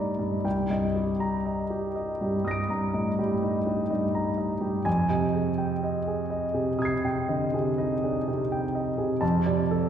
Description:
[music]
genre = classical, impressionist solo piano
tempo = 41 BPM (dotted quarters)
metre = 9/8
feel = rubato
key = C minor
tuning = A4 = 439 Hz
[part]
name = warm concert grand piano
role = solo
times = 0.0-9.9 s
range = C2 to D7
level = -24 LUFS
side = equal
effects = none
[sound]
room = wet concert hall reverb, RT60 1.9 s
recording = heard from further back in the room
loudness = -24 LUFS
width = side -9 dB against mid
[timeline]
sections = 0.0-9.9 A section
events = none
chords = 0.0 Cm9; 4.9 Fm9; 9.2 Dm7/F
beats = | 0.45 1.97 3.43 | 4.86 6.30 7.79 | 9.22

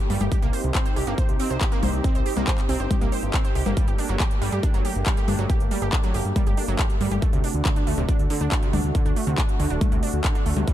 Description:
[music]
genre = uplifting trance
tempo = 139 BPM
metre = 4/4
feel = straight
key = unclear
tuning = A4 = 439 Hz
[part]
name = filtered supersaw swell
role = sustained chords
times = 0.0-10.7 s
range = A3 to G4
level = -31 LUFS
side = equal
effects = sidechain pumping
[part]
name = wide unison pluck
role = arpeggios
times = 0.1-10.7 s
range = C3 to C5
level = -29 LUFS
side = right 4 dB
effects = sidechain pumping, dub echo
[part]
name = fat analog bass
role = bass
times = 0.1-10.6 s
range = D1 to G2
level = -26 LUFS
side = equal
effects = sidechain pumping
[part]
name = big-room dance drum kit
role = drums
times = 0.1-10.7 s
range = congas, handclaps, hi-hat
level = -29 LUFS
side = left 3 dB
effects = none
[part]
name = electronic kick drum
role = drums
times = 0.3-10.7 s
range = none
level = -22 LUFS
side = equal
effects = none
[sound]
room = little or no reverb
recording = dark, warm production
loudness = -20 LUFS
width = side -12 dB against mid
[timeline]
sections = 0.0-10.7 A section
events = none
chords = 0.3 Cm; 3.8 Gmadd9; 7.2 D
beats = | 0.32 0.75 1.18 1.61 | 2.04 2.47 2.91 3.34 | 3.77 4.20 4.63 5.06 | 5.50 5.93 6.36 6.79 | 7.22 7.65 8.09 8.52 | 8.95 9.38 9.81 10.24 | 10.68

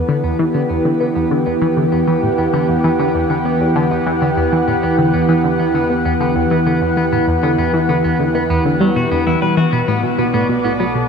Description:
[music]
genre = ambient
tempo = 98 BPM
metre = 4/4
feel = straight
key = unclear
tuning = A4 = 435 Hz
[part]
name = lush unison pad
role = sustained chords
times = 0.0-11.1 s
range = B2 to F#5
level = -15 LUFS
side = equal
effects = chorus, shimmer reverb
[part]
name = tight sequenced synth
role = riff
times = 0.0-11.0 s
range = E2 to B3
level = -19 LUFS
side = equal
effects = chorus, analog delay
[part]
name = warm sub bass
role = bass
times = 0.0-11.1 s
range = B1 to E2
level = -33 LUFS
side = equal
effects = none
[part]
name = clean electric guitar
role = arpeggios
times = 0.1-10.9 s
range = F#3 to B4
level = -26 LUFS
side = moving between left 6 dB and right 1 dB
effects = auto-pan, analog delay, shimmer reverb
[sound]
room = wet huge ambient reverb, RT60 7.9 s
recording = none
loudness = -13 LUFS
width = side -6 dB against mid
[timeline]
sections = 0.0-11.1 A section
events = fade-in on clean electric guitar 0.0-11.1; fade-in on sub bass 0.0-11.1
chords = 0.0 Emadd9; 9.7 Bm7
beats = 0.54 1.16 1.77 | 2.38 2.99 3.60 4.22 | 4.83 5.44 6.05 6.67 | 7.28 7.89 8.50 9.12 | 9.73 10.34 10.95

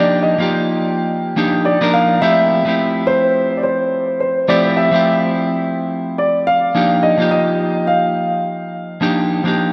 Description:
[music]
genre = sunset chillout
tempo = 106 BPM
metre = 4/4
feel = swing 56% on 16ths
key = F major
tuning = A4 = 440 Hz
[part]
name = dark grand piano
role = melody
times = 0.0-9.7 s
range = C5 to F5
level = -19 LUFS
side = equal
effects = subtle chorus, analog delay
[part]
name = clean electric guitar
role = accompaniment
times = 0.0-9.7 s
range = F3 to Bb4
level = -19 LUFS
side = equal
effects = analog delay
[sound]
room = wet plate reverb, RT60 3.1 s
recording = dreamy mix soaked in reverb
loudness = -16 LUFS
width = mono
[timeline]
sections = 0.0-9.7 A section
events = none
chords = 0.0 Ebmaj9; 2.2 Fmaj9; 6.8 Ebmaj9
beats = 0.53 1.09 1.66 | 2.23 2.79 3.36 3.92 | 4.49 5.05 5.62 6.19 | 6.75 7.32 7.88 8.45 | 9.02 9.58

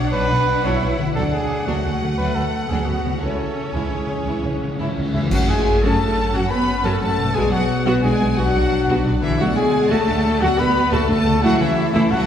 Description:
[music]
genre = cinematic, heroic adventure film score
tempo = 117 BPM (dotted quarters)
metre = 12/8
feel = straight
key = F# minor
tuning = A4 = 445 Hz
[part]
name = warm symphonic violin section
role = melody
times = 0.0-12.3 s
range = C#5 to B5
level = -28 LUFS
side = left 2 dB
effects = none
[part]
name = warm symphonic violin section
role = second line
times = 0.0-12.3 s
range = G#3 to A5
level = -33 LUFS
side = left 2 dB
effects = none
[part]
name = rich symphonic viola section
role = accompaniment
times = 0.0-12.2 s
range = E3 to F#4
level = -26 LUFS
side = right 1 dB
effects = none
[part]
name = concert harp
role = arpeggios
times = 0.0-12.3 s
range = F#2 to E5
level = -28 LUFS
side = left 5 dB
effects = none
[part]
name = mellow trumpet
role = stabs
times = 0.0-5.1 s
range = F#4 to C#5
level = -24 LUFS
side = right 1 dB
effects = none
[part]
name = clear symphonic double bass section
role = bass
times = 0.0-12.2 s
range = B1 to F#2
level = -24 LUFS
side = right 2 dB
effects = none
[part]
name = rich symphonic cello section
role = bass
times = 0.0-12.3 s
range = E3 to E4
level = -25 LUFS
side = right 2 dB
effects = none
[part]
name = cymbal swell, clash cymbals and concert bass drum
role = percussion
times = 1.2-6.0 s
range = none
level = -26 LUFS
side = equal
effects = none
[part]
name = timpani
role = percussion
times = 3.2-5.8, 11.4-11.9 s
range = F#2 to C#3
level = -27 LUFS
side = left 1 dB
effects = none
[part]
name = concert flute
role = second line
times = 5.1-12.3 s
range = E5 to B5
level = -29 LUFS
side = left 2 dB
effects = none
[part]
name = warm oboe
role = second line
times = 5.1-12.3 s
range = E4 to B4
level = -30 LUFS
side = equal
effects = none
[part]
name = warm French horn section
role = sustained chords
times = 5.1-12.3 s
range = E4 to B4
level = -22 LUFS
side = left 3 dB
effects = none
[part]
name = mellow clarinet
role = second line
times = 5.3-12.1 s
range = A3 to D4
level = -26 LUFS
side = equal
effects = none
[sound]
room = wet scoring stage reverb, RT60 1.6 s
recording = heard from further back in the room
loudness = -17 LUFS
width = side -9 dB against mid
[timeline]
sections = 0.0-5.3 A section; 5.3-12.3 B section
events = timpani fill 3.2-5.3; band accent 5.3-5.7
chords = 0.0 Bm; 1.2 D; 3.2 C#m; 5.3 F#m; 7.4 Bm; 9.4 D; 11.4 A/C#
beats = 0.14 0.65 | 1.16 1.67 2.18 2.70 | 3.22 3.74 4.27 4.79 | 5.31 5.83 6.33 6.84 | 7.36 7.87 8.38 8.89 | 9.39 9.90 10.41 10.91 | 11.42 11.93

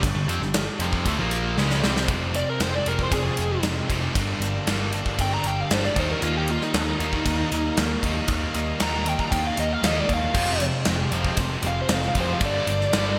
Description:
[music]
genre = hard rock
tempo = 116 BPM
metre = 4/4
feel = straight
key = unclear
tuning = A4 = 440 Hz
[part]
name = bright tonewheel organ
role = sustained chords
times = 0.0-13.2 s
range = F3 to G5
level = -42 LUFS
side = equal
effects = none
[part]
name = biting overdriven guitar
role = riff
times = 0.0-13.2 s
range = F2 to Eb4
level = -32 LUFS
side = equal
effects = none
[part]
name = sludgy distorted guitar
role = riff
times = 0.0-13.2 s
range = F2 to Eb4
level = -32 LUFS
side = equal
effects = overdrive
[part]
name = tight distorted guitar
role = riff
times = 0.0-2.1, 10.3-13.2 s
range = F2 to C#4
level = -33 LUFS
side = equal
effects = distortion
[part]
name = overdriven picked electric bass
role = bass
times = 0.0-13.2 s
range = F1 to F2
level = -31 LUFS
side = equal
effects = none
[part]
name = gated 80s drum kit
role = drums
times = 0.0-13.1 s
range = crash cymbal, kick drum, ride cymbal, snare drum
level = -29 LUFS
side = equal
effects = gated reverb
[part]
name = bluesy overdriven lead guitar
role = melody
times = 2.4-13.2 s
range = Eb4 to Bb5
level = -30 LUFS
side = equal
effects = distortion, digital delay
[sound]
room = moderate plate reverb, RT60 1.8 s, small room ambience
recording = bright 1980s-style digital production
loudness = -24 LUFS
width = mono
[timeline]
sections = 0.0-2.1 A section; 2.1-13.2 B section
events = drum fill 1.6-2.1; lead electric guitar solo 2.1-13.2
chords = 0.0 Gm; 2.1 Fm; 4.2 Gm; 6.0 Eb; 10.4 Fm; 12.4 Gm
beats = | 0.04 0.55 1.06 1.58 | 2.10 2.61 3.13 3.64 | 4.16 4.67 5.19 5.71 | 6.22 6.74 7.26 7.77 | 8.29 8.80 9.32 9.84 | 10.35 10.87 11.39 11.90 | 12.42 12.94

